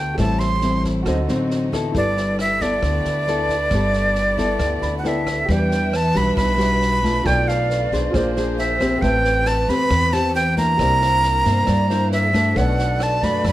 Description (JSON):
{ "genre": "bossa nova", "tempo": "136 BPM", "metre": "4/4", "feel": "straight", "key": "G major, E minor from 5.5 s", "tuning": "A4 = 439 Hz", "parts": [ { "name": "breathy bright jazz flute", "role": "melody", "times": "0.0-13.5 s", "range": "D5 to C6", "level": "-20 LUFS", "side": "right 1 dB", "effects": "none" }, { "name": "nylon-string guitar", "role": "accompaniment", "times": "0.0-13.5 s", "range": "A2 to C5", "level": "-23 LUFS", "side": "left 2 dB", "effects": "none" }, { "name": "warm baby grand piano", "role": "accompaniment", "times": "0.0-13.5 s", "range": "E4 to C#6", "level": "-29 LUFS", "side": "right 1 dB", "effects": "none" }, { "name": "warm symphonic violin section", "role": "sustained chords", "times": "0.0-13.5 s", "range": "A3 to E5", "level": "-33 LUFS", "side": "equal", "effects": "none" }, { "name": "upright bass", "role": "bass", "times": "0.0-13.5 s", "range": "G1 to G2", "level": "-23 LUFS", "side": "equal", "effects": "none" }, { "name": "compact cocktail drum kit", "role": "drums", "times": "0.2-13.5 s", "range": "kick drum, rim click, snare drum", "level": "-30 LUFS", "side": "equal", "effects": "none" }, { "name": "mellow reedy alto flute", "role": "second line", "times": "5.5-13.5 s", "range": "Bb4 to D5", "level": "-26 LUFS", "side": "right 4 dB", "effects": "none" } ], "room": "moderate studio reverb, RT60 0.8 s", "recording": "none", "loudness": "-17 LUFS", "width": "side -14 dB against mid", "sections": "0.0-5.5 A section; 5.5-13.5 B section", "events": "grand piano fill 4.6-5.5", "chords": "0.2 Am7; 1.1 D7b9; 1.9 G69; 5.5 Em9; 7.2 Bm7b5; 8.1 A#9; 9.0 Am9; 10.8 C9; 12.6 Bm7" }